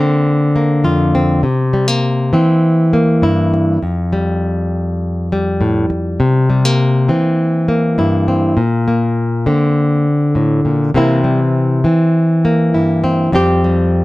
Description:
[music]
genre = highlife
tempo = 101 BPM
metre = 4/4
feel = straight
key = C mixolydian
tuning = A4 = 439 Hz
[part]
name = flamenco guitar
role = solo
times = 0.0-14.0 s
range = F2 to G4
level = -12 LUFS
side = left 1 dB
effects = none
[sound]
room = light reverb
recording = none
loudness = -12 LUFS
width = side -18 dB against mid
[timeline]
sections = 0.0-1.4 A section; 1.4-14.0 B section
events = none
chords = 0.0 Bbadd9; 1.4 C7; 3.8 Fsus2; 6.2 C7; 8.6 Bbadd9; 11.0 C7; 13.3 Fsus2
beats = 0.26 0.85 | 1.44 2.04 2.63 3.22 | 3.82 4.41 5.01 5.60 | 6.20 6.79 7.38 7.98 | 8.57 9.17 9.77 10.36 | 10.96 11.55 12.14 12.74 | 13.34 13.93

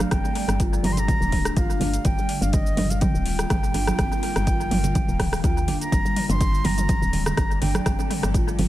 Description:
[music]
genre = afro house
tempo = 124 BPM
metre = 4/4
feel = swing 54% on 16ths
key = G minor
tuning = A4 = 441 Hz
[part]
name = breathy concert flute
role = melody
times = 0.0-8.3 s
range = Eb5 to C6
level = -30 LUFS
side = right 1 dB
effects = tape echo
[part]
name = ethereal airy pad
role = sustained chords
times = 0.0-8.7 s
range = Eb3 to F4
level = -33 LUFS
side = equal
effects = ensemble chorus, built-in reverb, phaser, sidechain pumping
[part]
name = woody FM bass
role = bass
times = 0.0-8.7 s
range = D1 to D2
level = -26 LUFS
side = equal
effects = sidechain pumping
[part]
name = deep house drum kit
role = drums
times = 0.0-8.7 s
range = cabasa, hi-hat, rim click, toms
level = -29 LUFS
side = equal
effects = overdrive, analog delay
[part]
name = congas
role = percussion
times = 0.0-8.7 s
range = none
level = -29 LUFS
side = right 3 dB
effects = analog delay
[part]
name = marimba with medium mallets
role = arpeggios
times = 0.1-8.6 s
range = D3 to F4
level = -31 LUFS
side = left 2 dB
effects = sidechain pumping, tape echo
[part]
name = electronic kick drum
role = drums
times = 0.1-8.4 s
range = none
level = -23 LUFS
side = equal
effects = overdrive
[sound]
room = little or no reverb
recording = echo-heavy mix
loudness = -20 LUFS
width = side -15 dB against mid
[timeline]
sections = 0.0-5.9 A section; 5.9-8.7 B section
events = drop 5.9-8.7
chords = 0.0 Gm7; 2.1 Eb; 5.9 Gm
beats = | 0.12 0.60 1.08 1.57 | 2.05 2.54 3.02 3.50 | 3.99 4.47 4.95 5.44 | 5.92 6.41 6.89 7.37 | 7.86 8.34

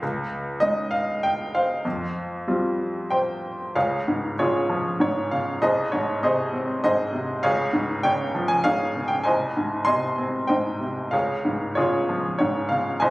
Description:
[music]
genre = classical, lyrical solo piano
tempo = 97 BPM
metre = 3/4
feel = rubato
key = F minor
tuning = A4 = 440 Hz
[part]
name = bright baby grand piano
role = solo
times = 0.0-13.1 s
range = C2 to C6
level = -21 LUFS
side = equal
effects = none
[sound]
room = light reverb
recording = recorded on a phone in the room, club reverb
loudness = -21 LUFS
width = side -20 dB against mid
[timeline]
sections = 0.0-3.8 A section; 3.8-13.1 B section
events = none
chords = 0.0 Dbsus2; 1.9 Fsus2; 3.8 Db; 5.6 Ab/C; 7.4 Db; 9.3 Ab/C; 11.1 Db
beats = | 0.02 0.62 1.23 | 1.85 2.47 3.11 | 3.76 4.39 5.01 | 5.62 6.23 6.84 | 7.44 8.05 8.65 | 9.26 9.87 10.49 | 11.13 11.77 12.40 | 13.03

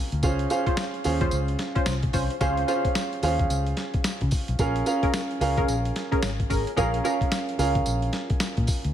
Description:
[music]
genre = R&B, new jack swing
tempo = 110 BPM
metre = 4/4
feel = swing 61% on 16ths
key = unclear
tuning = A4 = 440 Hz
[part]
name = clear grand piano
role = accompaniment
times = 0.0-8.9 s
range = C4 to F5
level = -27 LUFS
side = right 3 dB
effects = none
[part]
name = vintage muted fingered electric bass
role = bass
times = 0.1-8.9 s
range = Ab1 to Db3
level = -27 LUFS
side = left 1 dB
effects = none
[part]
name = boom bap sampler-style drum kit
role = drums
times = 0.1-8.9 s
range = hi-hat, kick drum, snare drum, tambourine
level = -27 LUFS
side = left 1 dB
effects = none
[part]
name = funky polysynth comp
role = stabs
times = 0.7-7.3 s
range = Db4 to C5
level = -30 LUFS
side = left 1 dB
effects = chorus, ping-pong delay
[sound]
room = light reverb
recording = none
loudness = -22 LUFS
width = side -10 dB against mid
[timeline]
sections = 0.0-8.9 A section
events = none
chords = 0.2 Dbmaj7; 4.6 Bbm7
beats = | 0.23 0.77 1.32 1.86 | 2.41 2.95 3.50 4.04 | 4.59 5.14 5.68 6.23 | 6.77 7.32 7.86 8.41

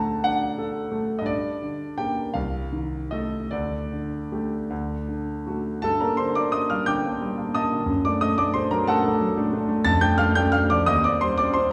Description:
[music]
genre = classical, romantic character piece for solo piano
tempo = 49-61 BPM (dotted quarters)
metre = 6/8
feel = rubato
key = G minor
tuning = A4 = 442 Hz
[part]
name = clear grand piano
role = solo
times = 0.0-11.7 s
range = C2 to A6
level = -24 LUFS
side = equal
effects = none
[sound]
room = wet recital hall reverb, RT60 1.3 s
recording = heard from further back in the room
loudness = -24 LUFS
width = mono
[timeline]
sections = 0.0-5.8 A section; 5.8-11.7 B section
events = none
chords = 0.0 D; 1.3 Gm; 2.4 Adim/C; 3.5 Dsus4; 4.7 D; 5.8 Gm; 7.9 D/F#; 9.9 Dm/F; 10.9 Cm/Eb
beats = 0.24 | 1.27 2.35 | 3.52 4.70 | 5.84 6.87 | 7.88 8.87 | 9.86 10.88

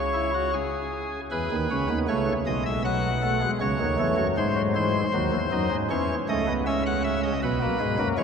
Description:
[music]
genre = classical, baroque-style 3-part fugue for pipe organ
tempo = 79 BPM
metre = 4/4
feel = straight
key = C# minor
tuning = A4 = 440 Hz
[part]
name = pipe organ, cornet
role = solo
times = 0.0-8.2 s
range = B1 to F#5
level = -23 LUFS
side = equal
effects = none
[sound]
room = wet cathedral reverb, RT60 4.8 s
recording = none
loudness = -23 LUFS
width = side -6 dB against mid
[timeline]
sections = 0.0-1.3 A section; 1.3-8.2 B section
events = none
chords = 0.0 C#m; 4.4 G#7; 5.9 C#m; 7.4 G#m/B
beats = 0.53 | 1.31 2.08 2.85 3.61 | 4.37 5.14 5.91 6.67 | 7.43 8.18

